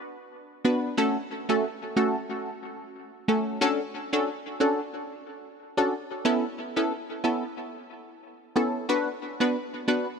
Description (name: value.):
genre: dancehall.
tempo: 91 BPM.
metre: 4/4.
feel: swing 56% on 16ths.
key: D major.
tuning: A4 = 440 Hz.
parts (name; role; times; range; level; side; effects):
punchy chord stab; solo; 0.6-10.1 s; A3 to B4; -26 LUFS; equal; chorus, tape echo.
room: light reverb.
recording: none.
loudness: -25 LUFS.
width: side -6 dB against mid.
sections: 0.0-3.6 A section; 3.6-10.2 B section.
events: none.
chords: 0.0 Bm; 1.0 F#m; 3.6 Dmaj7; 6.3 Aadd9; 8.9 Bm.